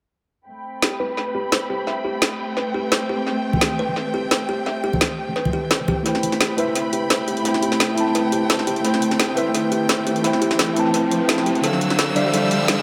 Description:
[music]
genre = liquid drum and bass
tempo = 172 BPM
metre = 4/4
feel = straight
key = A minor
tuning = A4 = 441 Hz
[part]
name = warm symphonic string section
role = sustained chords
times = 0.5-12.8 s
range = F3 to E6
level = -28 LUFS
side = equal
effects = low-pass filter
[part]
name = kalimba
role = arpeggios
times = 0.8-12.8 s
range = G4 to G5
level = -29 LUFS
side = equal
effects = low-pass filter, dub echo
[part]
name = drum and bass drum kit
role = drums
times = 0.8-12.8 s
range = hi-hat, snare drum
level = -24 LUFS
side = equal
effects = overdrive, studio reverb, analog delay
[part]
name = congas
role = percussion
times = 3.5-6.0 s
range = none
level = -27 LUFS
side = equal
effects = analog delay
[part]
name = mellow tine electric piano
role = accompaniment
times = 6.0-12.8 s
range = D3 to B5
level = -23 LUFS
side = equal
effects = overdrive, low-pass filter, tape echo
[part]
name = riser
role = sound effects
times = 8.3-12.8 s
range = none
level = -30 LUFS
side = equal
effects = none
[sound]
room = moderate spring reverb, RT60 1.7 s, small room ambience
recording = echo-heavy mix, high-pass filter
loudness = -20 LUFS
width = mono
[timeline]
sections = 0.5-6.1 A section; 6.1-12.8 B section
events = filter sweep on kalimba 0.5-6.1, 6.1-12.8; build-up 6.1-12.8; riser 8.3-12.8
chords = 0.5 Am9; 11.6 Dm9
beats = | 0.48 0.82 1.17 1.52 | 1.87 2.22 2.57 2.92 | 3.27 3.62 3.96 4.31 | 4.66 5.01 5.36 5.71 | 6.06 6.41 6.76 7.10 | 7.45 7.80 8.15 8.50 | 8.85 9.20 9.55 9.89 | 10.24 10.59 10.94 11.29 | 11.64 11.99 12.34 12.69

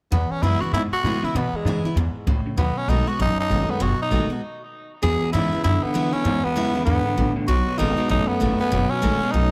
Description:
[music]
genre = rockabilly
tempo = 195 BPM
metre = 4/4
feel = swing 62% on 8ths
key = E major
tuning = A4 = 440 Hz
[part]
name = growling tenor saxophone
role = melody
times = 0.1-9.5 s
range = G#3 to G#4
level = -27 LUFS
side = equal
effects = tape echo
[part]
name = picked steel-string acoustic guitar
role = accompaniment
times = 0.1-9.5 s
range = E2 to F#4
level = -29 LUFS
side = equal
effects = none
[part]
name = electric guitar through a small old amp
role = riff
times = 0.1-9.5 s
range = E2 to A3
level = -30 LUFS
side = equal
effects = none
[part]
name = upright bass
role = bass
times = 0.1-9.5 s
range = F#1 to B2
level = -25 LUFS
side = equal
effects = none
[sound]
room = light reverb, studio ambience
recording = none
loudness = -22 LUFS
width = mono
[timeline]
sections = 0.1-5.0 A section; 5.0-9.5 B section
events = stop 4.4-5.0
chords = 0.1 E; 2.6 B7; 5.0 E; 7.5 B7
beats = | 0.12 0.42 0.73 1.04 | 1.34 1.65 1.96 2.27 | 2.57 2.88 3.19 3.49 | 3.80 4.11 4.42 4.72 | 5.03 5.34 5.64 5.95 | 6.26 6.57 6.87 7.18 | 7.49 7.79 8.10 8.41 | 8.72 9.03 9.33

